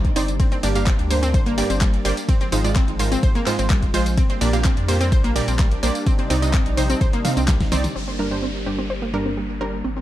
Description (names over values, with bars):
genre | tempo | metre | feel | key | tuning
progressive house | 127 BPM | 4/4 | straight | unclear | A4 = 440 Hz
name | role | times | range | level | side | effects
filtered supersaw swell | sustained chords | 0.0-10.0 s | C3 to Eb4 | -30 LUFS | equal | sidechain pumping
round analog bass | bass | 0.0-10.0 s | G1 to F2 | -24 LUFS | equal | sidechain pumping
deep house drum kit | drums | 0.0-7.9 s | handclaps, hi-hat, ride cymbal, snare drum, tambourine | -28 LUFS | left 1 dB | none
electronic kick drum | drums | 0.0-7.7 s | none | -19 LUFS | equal | none
analog pluck | arpeggios | 0.2-10.0 s | G3 to C5 | -27 LUFS | left 1 dB | chorus, sidechain pumping, digital delay
wide unison pluck | stabs | 0.2-9.7 s | G2 to F5 | -25 LUFS | right 3 dB | sidechain pumping, digital delay
downlifter | sound effects | 8.0-10.0 s | none | -34 LUFS | equal | none
room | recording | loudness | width
little or no reverb | dark, warm production | -18 LUFS | side -14 dB against mid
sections
0.0-8.0 A section; 8.0-10.0 B section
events
drop 0.0-8.0; drum fill 7.2-8.0; band accent 7.8; filter sweep on synth arpeggio sound 8.0-10.0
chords
0.4 Gm; 2.3 Fm/Ab; 4.2 Bb6; 6.1 Cmadd9; 8.0 Gm